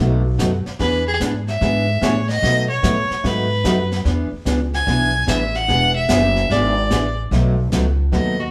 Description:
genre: country, western swing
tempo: 147 BPM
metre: 4/4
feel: swing 66% on 8ths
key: unclear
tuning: A4 = 441 Hz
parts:
  - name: picked steel-string acoustic guitar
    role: accompaniment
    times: 0.0-8.4 s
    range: B2 to G#4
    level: -25 LUFS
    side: equal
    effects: none
  - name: upright bass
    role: bass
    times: 0.0-8.5 s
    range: E1 to B2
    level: -22 LUFS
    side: equal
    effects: none
  - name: jazz brush drum kit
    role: drums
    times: 0.4-8.5 s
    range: brushed snare drum, hi-hat, kick drum, snare drum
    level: -28 LUFS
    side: equal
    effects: none
  - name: rich fiddle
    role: second line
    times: 0.8-8.5 s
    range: F#4 to G#5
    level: -22 LUFS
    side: equal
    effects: none
room: moderate studio reverb, RT60 0.9 s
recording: band playing live in one room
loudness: -18 LUFS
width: mono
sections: 0.0-8.5 A section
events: fiddle solo 0.0-8.5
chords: 0.0 B7; 0.8 E7; 2.4 B7; 4.1 E7; 7.3 B7

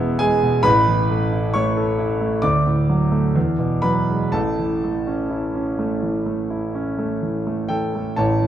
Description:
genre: classical, romantic character piece for solo piano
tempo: 60-68 BPM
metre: 4/4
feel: rubato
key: A major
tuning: A4 = 439 Hz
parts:
  - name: clear concert grand piano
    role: solo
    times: 0.0-8.5 s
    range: A1 to E6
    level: -18 LUFS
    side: right 1 dB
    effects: none
room: moderate concert hall reverb, RT60 1.8 s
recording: dark, warm production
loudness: -18 LUFS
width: side -10 dB against mid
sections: 0.0-8.2 A section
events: none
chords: 0.0 E; 0.6 A; 2.4 D; 3.4 E9; 4.3 A

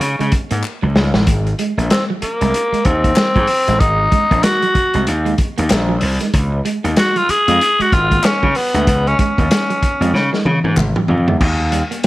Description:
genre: funk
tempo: 95 BPM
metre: 4/4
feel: swing 60% on 16ths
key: unclear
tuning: A4 = 441 Hz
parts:
  - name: raspy tenor saxophone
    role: melody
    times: 0.0-10.4 s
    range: Bb3 to Ab4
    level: -16 LUFS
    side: equal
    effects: none
  - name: gritty slap bass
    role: bass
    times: 0.0-11.8 s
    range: Ab1 to Db3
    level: -17 LUFS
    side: equal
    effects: overdrive
  - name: vintage drum kit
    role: drums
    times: 0.0-12.1 s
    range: crash cymbal, hi-hat, kick drum, snare drum, toms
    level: -17 LUFS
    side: equal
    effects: none
  - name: semi-hollow electric guitar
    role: riff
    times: 0.2-12.0 s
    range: Gb3 to Bb3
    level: -25 LUFS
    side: right 4 dB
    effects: spring reverb
  - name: group handclap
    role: percussion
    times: 0.6-10.9 s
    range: none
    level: -28 LUFS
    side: left 5 dB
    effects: none
room: small room ambience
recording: vinyl crackle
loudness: -13 LUFS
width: side -17 dB against mid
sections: 0.0-11.4 A section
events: drum fill 0.6-1.3, 10.1-11.4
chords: 0.0 Db5; 1.3 Abadd9; 6.3 Db5; 11.4 Eb

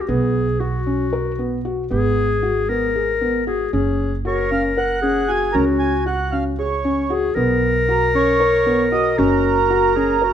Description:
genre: contemporary instrumental, chamber music in an uneven meter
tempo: 231 BPM (eighths)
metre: 7/8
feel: straight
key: unclear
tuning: A4 = 440 Hz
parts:
  - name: warm clarinet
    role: second line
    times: 0.0-10.3 s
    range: F#4 to A#4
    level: -20 LUFS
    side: left 4 dB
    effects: none
  - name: upright bass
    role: bass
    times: 0.0-10.3 s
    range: F#1 to C#2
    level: -24 LUFS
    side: right 2 dB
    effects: none
  - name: felt-muted upright piano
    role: arpeggios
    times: 0.1-10.3 s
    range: B3 to A#4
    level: -22 LUFS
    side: left 1 dB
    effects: none
  - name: mellow accordion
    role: melody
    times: 4.3-10.3 s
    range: A#4 to G#5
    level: -20 LUFS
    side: right 6 dB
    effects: none
room: light reverb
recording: none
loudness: -16 LUFS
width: side -9 dB against mid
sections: 0.0-10.3 A section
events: none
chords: 0.1 B5; 1.9 G#m7; 3.7 F#; 5.5 C#sus4; 7.4 B5; 9.2 F#

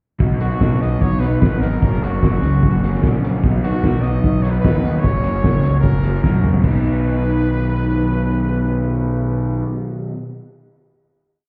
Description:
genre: indie rock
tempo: 150 BPM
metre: 4/4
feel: straight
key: B major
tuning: A4 = 440 Hz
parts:
  - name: crunchy overdriven guitar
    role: riff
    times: 0.2-10.2 s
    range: F#2 to D#4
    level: -24 LUFS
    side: equal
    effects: none
  - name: raw garage guitar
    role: riff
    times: 0.2-10.2 s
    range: F#2 to B4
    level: -30 LUFS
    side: equal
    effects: overdrive, ensemble chorus
  - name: fuzz fingered electric bass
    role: bass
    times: 0.2-9.6 s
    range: F#1 to F#2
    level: -21 LUFS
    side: equal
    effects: overdrive
  - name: cloth-damped thuddy drum kit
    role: drums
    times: 0.2-6.7 s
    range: crash cymbal, hi-hat, kick drum, snare drum, toms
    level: -21 LUFS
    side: equal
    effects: none
  - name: brilliant trumpet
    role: melody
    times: 0.4-9.6 s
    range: F#4 to D#5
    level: -30 LUFS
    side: equal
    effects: plate reverb
room: light reverb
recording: heard muffled through a wall, stone room reverb, EQ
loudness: -17 LUFS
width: mono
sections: 0.2-6.6 interlude; 6.6-9.8 final chord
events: drum fill 6.2-6.6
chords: 0.2 B; 1.8 F#; 3.4 B; 5.0 F#; 6.6 B

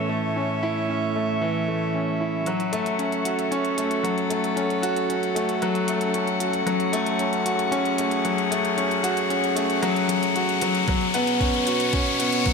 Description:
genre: piano and strings electronica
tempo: 114 BPM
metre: 4/4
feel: straight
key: F# minor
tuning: A4 = 438 Hz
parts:
  - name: rich string quartet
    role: sustained chords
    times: 0.0-12.5 s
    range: A2 to F#5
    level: -26 LUFS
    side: left 2 dB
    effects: sidechain pumping
  - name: bright concert grand piano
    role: riff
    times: 0.0-12.5 s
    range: E3 to F#4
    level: -24 LUFS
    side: equal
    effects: ping-pong delay
  - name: electronic hi-hat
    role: drums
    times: 2.5-12.5 s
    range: none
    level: -35 LUFS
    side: equal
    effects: none
  - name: riser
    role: sound effects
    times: 5.3-12.5 s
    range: none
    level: -31 LUFS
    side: left 4 dB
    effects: none
  - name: electronic kick drum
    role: drums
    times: 10.9-12.5 s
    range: none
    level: -25 LUFS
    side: equal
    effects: none
room: wet echo chamber reverb, RT60 2.0 s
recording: none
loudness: -21 LUFS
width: side -5 dB against mid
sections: 0.0-2.5 A section; 2.5-12.5 B section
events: build-up 2.5-12.5; riser 5.3-12.5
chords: 0.0 A; 2.5 F#m; 10.9 Bsus2

